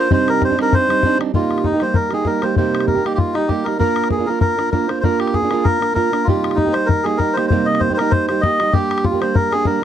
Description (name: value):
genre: celtic folk, Celtic reel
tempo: 195 BPM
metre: 4/4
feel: swing 55% on 8ths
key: C minor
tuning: A4 = 440 Hz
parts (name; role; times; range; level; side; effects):
- melodica; melody; 0.0-9.8 s; Eb4 to Eb5; -18 LUFS; left 2 dB; none
- fingerpicked plugged-in steel-string acoustic guitar; accompaniment; 0.0-9.8 s; C3 to Bb4; -19 LUFS; right 7 dB; none
- bodhran; percussion; 0.1-9.7 s; none; -20 LUFS; left 4 dB; none
room: light reverb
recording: dry, close 1970s-style studio recording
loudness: -15 LUFS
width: side -10 dB against mid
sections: 0.0-1.3 A section; 1.3-9.8 A section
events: none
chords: 0.1 Cmadd9; 1.3 Cm7; 3.8 Bb; 6.3 Cm7; 8.7 Gm